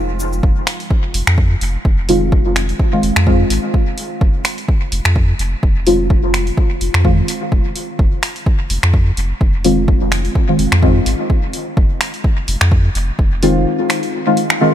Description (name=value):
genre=dub techno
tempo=127 BPM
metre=4/4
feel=swing 56% on 16ths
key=F minor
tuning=A4 = 443 Hz
part: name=warm sub bass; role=bass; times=0.0-13.7 s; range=F1 to F2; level=-17 LUFS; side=equal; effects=sidechain pumping
part: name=deep house drum kit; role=drums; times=0.2-14.6 s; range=finger snaps, hi-hat, shaker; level=-21 LUFS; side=equal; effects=overdrive, dub echo
part: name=electronic kick drum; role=drums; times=0.4-13.3 s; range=none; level=-14 LUFS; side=equal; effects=overdrive
part: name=deep mellow chord stab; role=stabs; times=2.1-14.7 s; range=Eb3 to F4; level=-17 LUFS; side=left 1 dB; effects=chorus, phaser, sidechain pumping, dub echo
room=light reverb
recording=none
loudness=-13 LUFS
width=side -11 dB against mid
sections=0.4-14.7 A section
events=none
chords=0.4 Fm7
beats=| 0.43 0.91 1.38 1.85 | 2.32 2.79 3.27 3.74 | 4.21 4.68 5.16 5.63 | 6.10 6.58 7.05 7.52 | 7.99 8.46 8.94 9.41 | 9.88 10.35 10.83 11.30 | 11.77 12.24 12.72 13.19 | 13.66 14.13 14.61